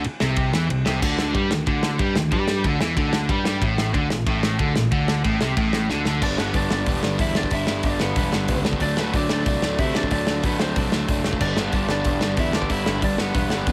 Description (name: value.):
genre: punk rock.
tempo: 185 BPM.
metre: 4/4.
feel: straight.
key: G major.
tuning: A4 = 438 Hz.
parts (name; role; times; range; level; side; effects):
crunchy overdriven guitar; riff; 0.0-13.7 s; G2 to D4; -26 LUFS; equal; none.
crunchy overdriven guitar; riff; 0.0-6.2 s; A2 to G3; -29 LUFS; equal; none.
picked electric bass; bass; 0.0-13.7 s; E1 to C3; -30 LUFS; equal; none.
loose indie drum kit; drums; 0.0-13.7 s; crash cymbal, hi-hat, kick drum, ride cymbal, snare drum; -27 LUFS; equal; none.
lightly driven lead guitar; melody; 6.2-13.7 s; B3 to E5; -30 LUFS; equal; digital delay.
room: light reverb.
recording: none.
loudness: -22 LUFS.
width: mono.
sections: 0.0-6.2 A section; 6.2-13.7 B section.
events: drum fill 5.9-6.2.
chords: 0.0 C; 1.0 Dsus24; 3.6 Amadd11; 6.2 G; 8.8 D; 11.4 G.